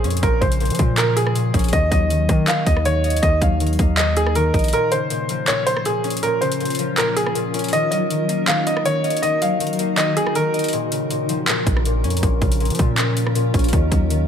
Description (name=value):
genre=hip hop, trap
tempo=160 BPM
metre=4/4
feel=half-time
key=Bb minor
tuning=A4 = 440 Hz
part: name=clear concert grand piano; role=melody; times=0.0-10.7 s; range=Ab4 to F5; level=-21 LUFS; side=right 1 dB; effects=ping-pong delay
part: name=concert harp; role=accompaniment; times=0.0-14.3 s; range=Bb2 to Eb5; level=-23 LUFS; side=left 3 dB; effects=none
part: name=hard-hitting 808-style bass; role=bass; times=0.0-4.7, 11.7-14.3 s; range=Bb1 to F3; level=-20 LUFS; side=right 1 dB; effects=none
part: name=trap drum kit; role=drums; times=0.0-14.2 s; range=handclaps, hi-hat, kick drum, rim click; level=-22 LUFS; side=equal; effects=overdrive
part: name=granular cloud pad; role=sustained chords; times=5.9-14.3 s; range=Eb3 to Bb4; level=-27 LUFS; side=equal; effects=built-in reverb
room=light reverb, digital ambience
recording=none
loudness=-16 LUFS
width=side -8 dB against mid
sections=0.0-14.3 A section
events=break 4.7-10.7, 10.7-11.5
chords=0.0 Bbm; 1.7 Ebm; 4.7 Bbm; 7.7 Ebm; 10.7 Bbm; 13.7 Ebm